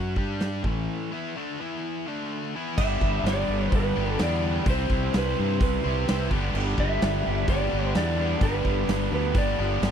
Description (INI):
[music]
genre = classic rock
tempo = 128 BPM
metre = 4/4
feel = straight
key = unclear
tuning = A4 = 440 Hz
[part]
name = cranked stack guitar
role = riff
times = 0.0-9.9 s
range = G2 to C5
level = -31 LUFS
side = left 15 dB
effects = overdrive
[part]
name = tight distorted guitar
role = riff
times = 0.0-9.9 s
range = G2 to C5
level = -34 LUFS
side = right 15 dB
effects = distortion
[part]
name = fuzz fingered electric bass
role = bass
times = 0.0-9.9 s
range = G1 to G2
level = -28 LUFS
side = equal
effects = overdrive
[part]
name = huge arena drum kit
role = drums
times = 0.2-9.9 s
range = crash cymbal, hi-hat, kick drum, snare drum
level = -27 LUFS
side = equal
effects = none
[part]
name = electric slide guitar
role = melody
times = 2.8-9.9 s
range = B4 to E5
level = -29 LUFS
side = right 2 dB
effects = none
[part]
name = tight distorted guitar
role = riff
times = 2.8-9.9 s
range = G2 to C5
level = -33 LUFS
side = right 4 dB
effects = distortion
[sound]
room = little or no reverb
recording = dry, close 1970s-style studio recording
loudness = -23 LUFS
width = side -8 dB against mid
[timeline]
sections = 0.0-2.8 A section; 2.8-9.9 B section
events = break 0.9-2.8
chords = 0.2 G5; 0.6 A5; 1.1 Asus24; 1.6 E5; 2.1 D5; 2.5 E5; 2.8 G; 4.7 C; 6.3 G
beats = 0.41 | 0.88 1.36 1.84 2.31 | 2.79 3.26 3.73 4.21 | 4.68 5.15 5.62 6.08 | 6.55 7.02 7.49 7.96 | 8.42 8.89 9.36 9.83